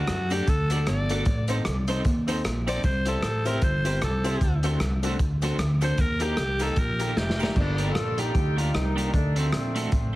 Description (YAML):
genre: ska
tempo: 152 BPM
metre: 4/4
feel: swing 58% on 8ths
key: G minor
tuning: A4 = 440 Hz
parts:
  - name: growling alto saxophone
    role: melody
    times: 0.0-7.6 s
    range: F#4 to D5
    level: -31 LUFS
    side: equal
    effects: tape echo
  - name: electric guitar at the edge of break-up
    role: accompaniment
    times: 0.0-10.2 s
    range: A3 to D5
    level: -34 LUFS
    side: right 3 dB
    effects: tremolo
  - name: clear upright piano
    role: stabs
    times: 0.0-7.5 s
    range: A3 to C5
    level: -34 LUFS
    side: left 3 dB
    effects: tape echo
  - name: upright bass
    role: bass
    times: 0.0-10.2 s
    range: F1 to F#2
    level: -26 LUFS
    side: equal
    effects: none
  - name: crunchy breakbeat drum kit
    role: drums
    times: 0.1-10.0 s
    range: crash cymbal, hi-hat, kick drum, rim click, snare drum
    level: -28 LUFS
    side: equal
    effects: none
  - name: cabasa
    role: percussion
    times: 0.1-7.5 s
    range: none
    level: -48 LUFS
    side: left 5 dB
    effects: none
  - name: mellow horn section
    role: melody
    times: 7.6-9.9 s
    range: A3 to A4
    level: -30 LUFS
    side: equal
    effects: tape echo
room: little or no reverb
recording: heavily compressed radio sound, multiband compression, vinyl crackle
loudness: -22 LUFS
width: side -17 dB against mid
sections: 0.0-7.6 A section; 7.6-10.2 B section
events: alto saxophone solo 0.0-7.6; drum fill 7.2-7.6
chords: 0.0 D; 1.3 Adim; 2.8 C; 4.4 D7; 6.0 Eb; 7.6 Gm; 9.1 D